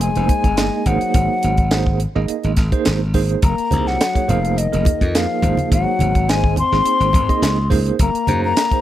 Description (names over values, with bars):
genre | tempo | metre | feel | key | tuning
electric jazz fusion | 105 BPM | 4/4 | straight | Ab mixolydian | A4 = 440 Hz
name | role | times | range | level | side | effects
mellow hollow jazz flute | melody | 0.0-8.8 s | Eb5 to C6 | -20 LUFS | left 3 dB | slapback echo
mellow trombone | second line | 0.0-8.8 s | Eb3 to C4 | -25 LUFS | left 10 dB | none
bright tine electric piano | accompaniment | 0.0-8.8 s | Bb3 to Eb5 | -23 LUFS | right 9 dB | fast tremolo, phaser
glassy slap bass | bass | 0.0-8.5 s | F1 to Gb2 | -20 LUFS | equal | none
tight funk drum kit | drums | 0.0-8.8 s | hi-hat, kick drum, snare drum | -19 LUFS | equal | none
congas | percussion | 3.7-8.4 s | none | -23 LUFS | right 1 dB | none
room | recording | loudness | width
studio ambience | none | -15 LUFS | side -13 dB against mid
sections
0.0-8.8 A section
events
none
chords
0.0 Fm7; 0.9 Ab9; 3.4 Gb; 4.3 Fm7; 5.4 Ab9; 8.0 Gb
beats
0.01 0.58 | 1.15 1.72 2.29 2.86 | 3.43 4.00 4.57 5.14 | 5.71 6.28 6.85 7.42 | 7.99 8.56